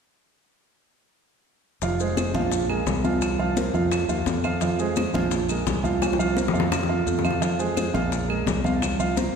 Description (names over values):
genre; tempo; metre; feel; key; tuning
Afro-Cuban jazz; 171 BPM; 4/4; straight; F minor; A4 = 441 Hz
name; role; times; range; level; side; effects
warm concert grand piano; accompaniment; 1.8-9.3 s; F3 to F5; -25 LUFS; right 4 dB; none
modern bright fingered electric bass; bass; 1.8-9.3 s; F1 to F2; -27 LUFS; left 1 dB; none
bongos; percussion; 1.8-9.3 s; none; -30 LUFS; left 6 dB; none
congas; percussion; 1.8-9.3 s; none; -30 LUFS; left 2 dB; none
maracas; percussion; 1.8-9.3 s; none; -37 LUFS; left 8 dB; none
claves; percussion; 2.2-9.0 s; none; -36 LUFS; equal; none
room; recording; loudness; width
wet concert hall reverb, RT60 1.9 s; recorded in a church or concert hall; -21 LUFS; side -6 dB against mid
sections
1.8-9.4 A section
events
drum fill 6.0-7.4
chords
1.8 Fm; 2.5 Bb5; 3.2 C7sus4; 3.9 Fm; 5.3 Bb5; 6.0 C7sus4; 6.7 Bb5; 8.8 C7sus4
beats
| 1.82 2.17 2.52 2.87 | 3.22 3.57 3.92 4.27 | 4.62 4.97 5.32 5.67 | 6.02 6.37 6.72 7.07 | 7.42 7.77 8.12 8.47 | 8.82 9.17